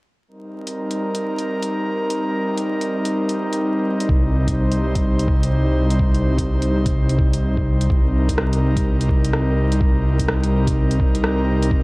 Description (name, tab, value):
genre	future garage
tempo	126 BPM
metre	4/4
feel	swing 63% on 16ths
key	C minor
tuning	A4 = 441 Hz
part	airy breathy pad	sustained chords	0.3-11.8 s	G3 to C5	-22 LUFS	equal	chorus, sidechain pumping, cassette tape
part	garage drum kit	drums	0.7-11.7 s	hi-hat, rim click	-27 LUFS	equal	cassette tape
part	dark detuned saw bass	bass	4.1-11.8 s	C2	-19 LUFS	equal	transformer saturation, sidechain pumping
part	electronic kick drum	drums	4.1-11.8 s	none	-20 LUFS	equal	cassette tape
room	light reverb, digital ambience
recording	home recording on cassette, vinyl crackle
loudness	-17 LUFS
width	side -24 dB against mid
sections	0.3-7.9 A section; 7.9-11.8 B section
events	none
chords	0.3 Cm7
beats	| 0.28 0.76 1.24 1.71 | 2.19 2.66 3.14 3.62 | 4.09 4.57 5.04 5.52 | 6.00 6.47 6.95 7.42 | 7.90 8.38 8.85 9.33 | 9.81 10.28 10.76 11.23 | 11.71